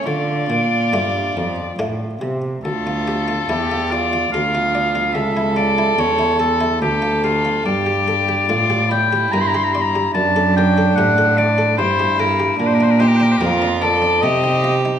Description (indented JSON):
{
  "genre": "classical, baroque-style sonata movement with continuo",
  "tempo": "72 BPM",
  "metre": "3/4",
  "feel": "straight",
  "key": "D minor",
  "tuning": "A4 = 440 Hz",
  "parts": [
    { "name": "bright oboe", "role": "melody", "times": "0.0-14.8 s", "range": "F4 to C6", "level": "-20 LUFS", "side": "left 5 dB", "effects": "none" },
    { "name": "rich violin", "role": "second line", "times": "0.0-15.0 s", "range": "D4 to A4", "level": "-20 LUFS", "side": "right 3 dB", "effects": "none" },
    { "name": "buff-stop harpsichord", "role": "accompaniment", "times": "0.0-15.0 s", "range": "C#2 to D5", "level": "-26 LUFS", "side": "left 1 dB", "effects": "none" },
    { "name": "dark cello", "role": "bass", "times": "0.0-15.0 s", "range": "C#2 to D3", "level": "-20 LUFS", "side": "right 1 dB", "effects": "none" }
  ],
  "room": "wet recital hall reverb, RT60 1.6 s",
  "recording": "recorded in a church or concert hall",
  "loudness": "-15 LUFS",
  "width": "side -8 dB against mid",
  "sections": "0.0-2.6 A section; 2.6-15.0 B section",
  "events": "none",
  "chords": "0.1 Dm; 5.2 A/C#; 6.8 Dm; 7.7 Gm; 10.1 D/F#; 11.8 Gm; 12.6 Bb; 14.2 Cm",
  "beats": "| 0.06 0.93 1.79 | 2.65 3.49 4.33 | 5.15 5.98 6.81 | 7.66 8.49 9.31 | 10.14 10.96 11.78 | 12.59 13.41 14.23"
}